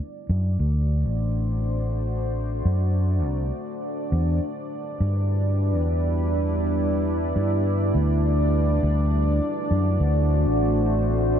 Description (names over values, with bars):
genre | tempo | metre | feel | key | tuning
ambient dub | 102 BPM | 4/4 | swing 56% on 16ths | unclear | A4 = 441 Hz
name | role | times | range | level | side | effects
deep dark ambient pad | sustained chords | 0.0-11.4 s | G3 to D5 | -26 LUFS | equal | chorus, built-in reverb
fingered electric bass | bass | 0.3-11.4 s | A1 to G2 | -22 LUFS | equal | tube saturation
room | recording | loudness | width
light reverb | dark, warm production | -21 LUFS | side -8 dB against mid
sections
0.0-11.4 A section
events
fade-in on ambient pad 0.0-11.4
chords
0.0 D7; 4.1 Em7; 8.8 D7